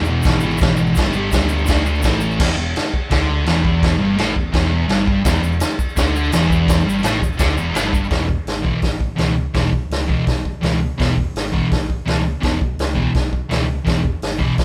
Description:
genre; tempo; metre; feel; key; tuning
garage rock duo or trio; 168 BPM; 4/4; straight; unclear; A4 = 440 Hz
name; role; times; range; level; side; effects
fuzz guitar; riff; 0.0-14.5 s; E2 to D4; -22 LUFS; equal; distortion
overdriven fingered electric bass; bass; 0.0-14.6 s; E1 to D2; -25 LUFS; equal; none
tube shaker; percussion; 0.0-2.4, 5.3-8.1 s; none; -39 LUFS; equal; none
vintage drum kit; drums; 0.3-14.6 s; crash cymbal, hi-hat, kick drum, snare drum; -22 LUFS; equal; none
room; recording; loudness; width
light reverb; band playing live in one room; -18 LUFS; mono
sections
0.0-2.4 A section; 2.4-8.1 B section; 8.1-14.6 C section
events
none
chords
0.0 E; 1.0 G5; 1.7 D5; 2.0 A5; 2.4 Em7; 8.1 E5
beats
0.25 0.60 | 0.96 1.32 1.68 2.03 | 2.39 2.75 3.10 3.46 | 3.82 4.17 4.53 4.89 | 5.25 5.60 5.96 6.32 | 6.67 7.03 7.39 7.75 | 8.11 8.46 8.82 9.19 | 9.54 9.90 10.27 10.62 | 10.98 11.34 11.70 12.06 | 12.42 12.78 13.14 13.50 | 13.86 14.21 14.57

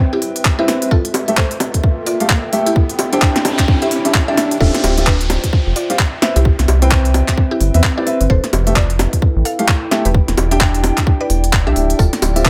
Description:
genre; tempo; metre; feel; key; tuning
UK garage, two-step garage; 130 BPM; 4/4; swing 60% on 16ths; D dorian; A4 = 440 Hz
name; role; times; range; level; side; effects
warm grand piano; stabs; 0.0-12.4 s; A3 to G5; -22 LUFS; equal; digital delay
riser, noise sweep and downlifter; sound effects; 0.2-8.3 s; none; -28 LUFS; equal; none
warbly tape-like pad; texture; 0.0-12.5 s; C4 to G5; -28 LUFS; equal; chorus, built-in reverb, sidechain pumping
mallet-like synth pluck; melody; 0.1-12.5 s; D4 to F5; -26 LUFS; equal; subtle chorus
garage drum kit; drums; 0.2-12.5 s; bongos, handclaps, hi-hat, snare drum, tambourine; -21 LUFS; equal; none
electronic kick drum; drums; 0.5-12.5 s; none; -17 LUFS; equal; none
rubbery square bass; bass; 4.6-12.5 s; D1 to E2; -17 LUFS; equal; sidechain pumping
room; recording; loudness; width
moderate studio reverb, RT60 0.6 s; none; -15 LUFS; mono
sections
0.0-4.6 A section; 4.6-12.5 B section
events
build-up 0.0-4.6; riser 0.2-4.6; noise sweep 2.8-4.6; drop 4.6-12.5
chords
0.0 Cmaj7; 0.9 Fmaj9; 2.8 Em7; 4.6 Dm11; 6.2 Cmaj7; 8.3 Fmaj9; 10.1 Em7; 12.0 Dm11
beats
0.45 | 0.91 1.37 1.84 2.30 | 2.76 3.22 3.68 4.14 | 4.61 5.07 5.53 5.99 | 6.45 6.91 7.37 7.84 | 8.30 8.76 9.22 9.68 | 10.14 10.61 11.07 11.53 | 11.99 12.45

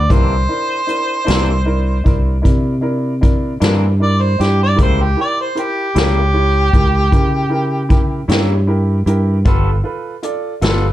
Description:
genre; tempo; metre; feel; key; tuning
slow blues; 51 BPM (dotted quarters); 12/8; straight; unclear; A4 = 440 Hz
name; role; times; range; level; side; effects
mellow harmonica; melody; 0.0-8.3 s; G4 to D5; -18 LUFS; equal; overdrive
fingered electric bass; bass; 0.0-10.9 s; G1 to C#3; -15 LUFS; equal; none
clear upright piano; accompaniment; 0.1-10.9 s; D4 to D5; -23 LUFS; right 2 dB; none
electric guitar through a small old amp; accompaniment; 0.1-10.9 s; C3 to A4; -23 LUFS; left 4 dB; harmonic tremolo
vintage brush drum kit; drums; 0.1-10.8 s; hi-hat, kick drum, snare drum; -16 LUFS; equal; none
room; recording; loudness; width
light reverb; dark, warm production; -13 LUFS; side -14 dB against mid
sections
0.0-10.9 A section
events
harmonica solo 0.0-10.9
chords
0.1 C9; 4.8 C#dim7; 9.5 G9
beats
| 0.10 1.28 2.45 3.62 | 4.79 5.96 7.13 8.29 | 9.46 10.63

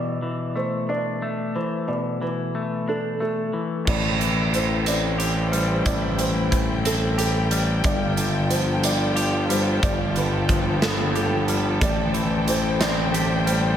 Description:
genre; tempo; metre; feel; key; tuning
post-rock; 60 BPM (dotted quarters); 6/8; straight; A minor; A4 = 442 Hz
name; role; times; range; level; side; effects
felt-muted upright piano; arpeggios; 0.0-13.8 s; A4 to D5; -29 LUFS; right 2 dB; slapback echo
semi-hollow electric guitar; arpeggios; 0.0-13.8 s; G2 to G4; -26 LUFS; left 2 dB; spring reverb, slapback echo
rich chamber string section; sustained chords; 3.9-13.8 s; G3 to G5; -28 LUFS; left 1 dB; none
fuzz fingered electric bass; bass; 3.9-13.8 s; G1 to A1; -24 LUFS; equal; overdrive
big rock drum kit; drums; 3.9-13.6 s; crash cymbal, hi-hat, kick drum, snare drum; -25 LUFS; right 1 dB; none
room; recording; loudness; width
moderate lush hall reverb, RT60 2.4 s; big arena sound; -20 LUFS; side -9 dB against mid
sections
0.0-3.9 A section; 3.9-13.8 B section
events
none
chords
0.0 E7sus4/B; 3.9 Am7; 7.8 G7; 11.8 Am7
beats
0.89 | 1.89 2.88 | 3.88 4.87 | 5.86 6.86 | 7.85 8.84 | 9.83 10.82 | 11.82 12.81

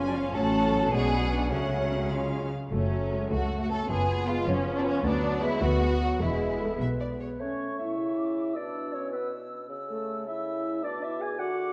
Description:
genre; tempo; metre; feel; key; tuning
classical; 104 BPM (dotted quarters); 6/8; rubato; F# minor, A major from 5.0 s; A4 = 439 Hz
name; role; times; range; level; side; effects
warm studio violin section; melody; 0.0-7.3 s; A4 to G#5; -44 LUFS; equal; none
flute section; second line; 0.0-11.7 s; C#5 to E6; -39 LUFS; equal; none
mellow clarinet; second line; 0.0-11.7 s; E#4 to G#5; -40 LUFS; equal; none
warm symphonic violin section; second line; 0.0-6.8 s; C#4 to A4; -35 LUFS; equal; none
dark studio viola section; accompaniment; 0.0-7.1 s; F#3 to D4; -36 LUFS; equal; none
mellow bassoon; accompaniment; 0.0-11.7 s; B2 to D4; -39 LUFS; equal; none
mellow French horn section; sustained chords; 0.0-11.7 s; E#3 to G#4; -35 LUFS; equal; none
rich symphonic cello section; bass; 0.0-7.3 s; C#2 to C#3; -35 LUFS; equal; none
rich symphonic double bass section; bass; 0.0-7.3 s; E1 to D2; -34 LUFS; equal; none
room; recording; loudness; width
wet concert hall reverb, RT60 2.3 s; dark, warm production; -28 LUFS; mono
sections
0.0-7.4 A section; 7.4-11.7 B section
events
none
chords
0.3 F#m/A; 0.9 G#m7b5/B; 1.5 F#m/C#; 2.1 C#; 2.7 F#m; 3.9 C#7/F#; 5.0 Bm/D; 6.2 E; 7.4 A; 8.6 E5/B; 9.7 A/C#; 10.8 Bm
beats
| 0.35 0.92 | 1.51 2.11 | 2.71 3.30 | 3.88 4.46 | 5.04 5.62 | 6.21 6.80 | 7.40 7.98 | 8.55 9.13 | 9.69 10.26 | 10.83 11.39

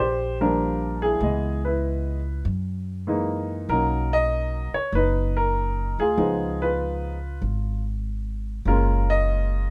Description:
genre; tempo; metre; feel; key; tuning
jazz piano trio; 97 BPM; 4/4; swing 69% on 8ths; unclear; A4 = 440 Hz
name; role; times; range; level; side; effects
warm baby grand piano; melody; 0.0-9.7 s; Fb3 to Eb5; -26 LUFS; equal; none
upright bass; bass; 0.0-9.7 s; F#1 to Gb2; -28 LUFS; equal; none
room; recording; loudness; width
light reverb; none; -25 LUFS; mono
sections
0.0-9.7 A section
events
none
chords
0.0 Ebmaj9 (rootless); 1.2 Dbm7; 2.5 Gb13; 3.7 Bmaj9; 6.2 Db9; 8.7 Gbmaj9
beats
0.59 | 1.22 1.83 2.46 3.08 | 3.70 4.32 4.94 5.56 | 6.18 6.80 7.42 8.04 | 8.66 9.28

